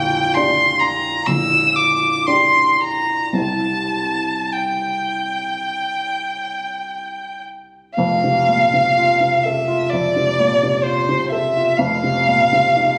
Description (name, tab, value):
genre	classical, romantic duo for violin and grand piano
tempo	50-67 BPM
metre	4/4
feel	rubato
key	F major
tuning	A4 = 439 Hz
part	rich violin	melody	0.0-13.0 s	C5 to E6	-19 LUFS	equal	none
part	dark baby grand piano	accompaniment	0.0-13.0 s	Bb0 to D5	-24 LUFS	equal	none
room	wet recital hall reverb, RT60 1.7 s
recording	recorded on a phone in the room, club reverb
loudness	-18 LUFS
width	mono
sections	0.0-8.0 A section; 8.0-13.0 B section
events	none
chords	0.0 Gm/Bb; 3.4 C; 8.0 F; 11.8 F7(no3)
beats	0.36 1.27 2.28 | 3.38 4.54 5.68 6.83 | 7.97 8.96 9.91 10.85 | 11.80 12.76